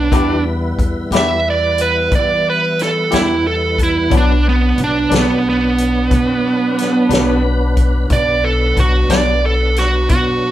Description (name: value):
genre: slow blues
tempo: 60 BPM (dotted quarters)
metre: 12/8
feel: straight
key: B minor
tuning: A4 = 440 Hz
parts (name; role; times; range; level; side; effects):
- smooth overdriven lead guitar; melody; 0.0-10.5 s; B3 to E5; -16 LUFS; right 3 dB; none
- tonewheel organ; sustained chords; 0.0-10.5 s; F#3 to B4; -22 LUFS; left 1 dB; overdrive, chorus vibrato, slow rotary speaker
- upright bass; bass; 0.0-10.5 s; B1 to E3; -18 LUFS; left 1 dB; none
- electric guitar at the edge of break-up; accompaniment; 0.1-9.3 s; B2 to G4; -20 LUFS; left 4 dB; tremolo
- vintage drum kit; drums; 0.1-10.3 s; hi-hat, kick drum, snare drum; -19 LUFS; left 1 dB; none
room: light reverb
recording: band playing live in one room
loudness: -12 LUFS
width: side -13 dB against mid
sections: 0.0-10.5 A section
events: lead electric guitar solo 0.0-10.5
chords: 0.1 Em; 4.1 Bm